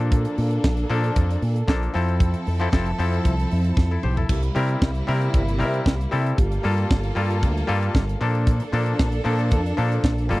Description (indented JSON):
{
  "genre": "disco",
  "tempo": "115 BPM",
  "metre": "4/4",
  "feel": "straight",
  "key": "unclear",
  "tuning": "A4 = 441 Hz",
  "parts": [
    { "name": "bright clav", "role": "accompaniment", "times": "0.0-10.4 s", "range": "F3 to C5", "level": "-26 LUFS", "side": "left 3 dB", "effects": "none" },
    { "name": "clear studio string section", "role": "sustained chords", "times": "0.0-10.4 s", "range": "C3 to A4", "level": "-28 LUFS", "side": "right 1 dB", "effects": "none" },
    { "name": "fingered electric bass with an envelope filter", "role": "bass", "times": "0.0-10.4 s", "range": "F1 to C3", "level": "-23 LUFS", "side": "equal", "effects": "none" },
    { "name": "tight funk drum kit", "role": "drums", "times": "0.0-10.4 s", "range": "crash cymbal, hi-hat, kick drum, snare drum, toms", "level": "-21 LUFS", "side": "equal", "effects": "none" }
  ],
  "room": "little or no reverb",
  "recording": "dry, close 1970s-style studio recording",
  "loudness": "-19 LUFS",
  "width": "side -19 dB against mid",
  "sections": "0.0-4.3 A section; 4.3-10.4 B section",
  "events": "drum fill 3.8-4.3",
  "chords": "0.0 Bbmaj7; 1.9 Fmaj7; 4.3 C7; 6.4 Gm9; 8.2 Bbmaj7"
}